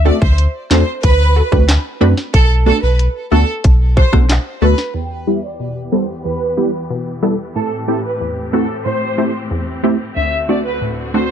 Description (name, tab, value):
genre	dancehall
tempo	92 BPM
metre	4/4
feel	straight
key	E minor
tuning	A4 = 440 Hz
part	sub bass with octave	bass	0.0-4.7 s	B1 to F#2	-13 LUFS	equal	none
part	rich studio violin section	melody	0.1-11.3 s	A4 to G5	-21 LUFS	right 1 dB	low-pass filter, digital delay
part	punchy chord stab	accompaniment	0.1-11.3 s	D2 to B4	-17 LUFS	equal	chorus, low-pass filter
part	island pop drum kit	drums	0.2-4.9 s	handclaps, hi-hat, kick drum, rim click, snare drum	-13 LUFS	equal	vintage 12-bit sampler grit
part	bright studio string section	sustained chords	4.9-11.3 s	D2 to G4	-27 LUFS	left 1 dB	sidechain pumping, low-pass filter
room	digital ambience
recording	dark, warm production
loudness	-13 LUFS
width	side -9 dB against mid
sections	0.0-4.9 A section; 4.9-11.3 B section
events	filter sweep 4.9-11.3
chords	0.0 D7; 2.3 Bm7; 4.9 Em; 7.6 Am7; 10.2 D7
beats	0.38 1.03 1.68 | 2.34 2.99 3.64 4.29 | 4.94 5.60 6.25 6.90 | 7.55 8.21 8.86 9.51 | 10.16 10.81